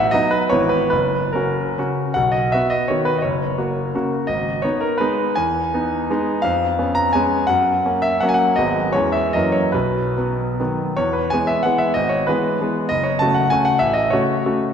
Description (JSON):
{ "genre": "classical, romantic triple-time dance for piano with dotted rhythms", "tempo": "134-205 BPM", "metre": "3/4", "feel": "rubato", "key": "B major, E major from 11.0 s", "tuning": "A4 = 440 Hz", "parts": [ { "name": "bright concert grand piano", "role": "solo", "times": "0.0-14.7 s", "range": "F#1 to A#5", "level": "-17 LUFS", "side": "equal", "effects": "none" } ], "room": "wet concert hall reverb, RT60 2.5 s", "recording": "none", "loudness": "-17 LUFS", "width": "side -7 dB against mid", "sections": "0.0-2.2 A section; 2.2-11.0 B section; 11.0-14.7 C section", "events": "none", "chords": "0.0 B7/A; 0.5 E/G#; 0.9 F#; 2.2 B; 3.2 F#; 4.3 G#m; 5.4 Emaj7; 6.4 C#7/E#; 7.5 F#; 8.6 G#m7; 8.9 C#m/E; 9.3 F#7; 9.7 B; 11.0 E; 12.0 E/G#; 12.9 F#m; 13.8 F#m/A" }